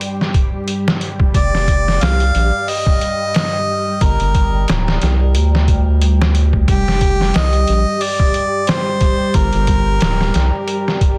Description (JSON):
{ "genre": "trip hop", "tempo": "90 BPM", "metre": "4/4", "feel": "swing 56% on 16ths", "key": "unclear", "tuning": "A4 = 440 Hz", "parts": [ { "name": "string machine, cellos", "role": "sustained chords", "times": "0.0-11.2 s", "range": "G3 to G4", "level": "-25 LUFS", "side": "equal", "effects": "phaser, ensemble chorus" }, { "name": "trip hop sampler-style drum kit", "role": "drums", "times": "0.0-11.2 s", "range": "hi-hat, kick drum, snare drum", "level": "-19 LUFS", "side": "equal", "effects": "small room reverb" }, { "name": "round analog bass", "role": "bass", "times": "1.3-10.5 s", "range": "D1 to D2", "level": "-17 LUFS", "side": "equal", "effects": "none" }, { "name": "warm harmonica", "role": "melody", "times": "1.4-10.7 s", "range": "G4 to F5", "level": "-23 LUFS", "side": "equal", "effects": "tape echo" } ], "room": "digital ambience", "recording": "dense, heavily limited modern master, vinyl crackle", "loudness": "-16 LUFS", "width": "mono", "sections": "0.0-11.2 A section", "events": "none", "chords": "0.0 G5; 1.3 Fsus2; 4.0 Gm; 6.7 Fsus2; 9.3 Gm" }